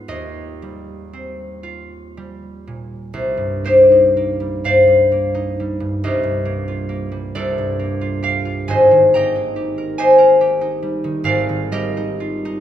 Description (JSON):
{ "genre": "classical, solo harp piece", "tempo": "38-47 BPM (dotted quarters)", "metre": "6/8", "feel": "rubato", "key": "Eb major, C minor from 3.1 s", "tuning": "A4 = 440 Hz", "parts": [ { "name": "concert harp", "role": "solo", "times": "0.0-12.6 s", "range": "Ab1 to Bb5", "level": "-15 LUFS", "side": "left 1 dB", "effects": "none" } ], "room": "moderate recital hall reverb, RT60 1.7 s", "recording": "minimal, uncompressed stereo recording", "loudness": "-14 LUFS", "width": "side -10 dB against mid", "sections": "0.0-3.1 A section; 3.1-12.6 B section", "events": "none", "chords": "0.1 Eb69; 3.1 Cm9; 7.3 Gm9/C; 8.7 Abmaj9; 11.2 Ebmaj9/Ab", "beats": "| 0.07 1.63 | 3.14 4.65 | 6.02 7.35 | 8.66 9.96 | 11.25" }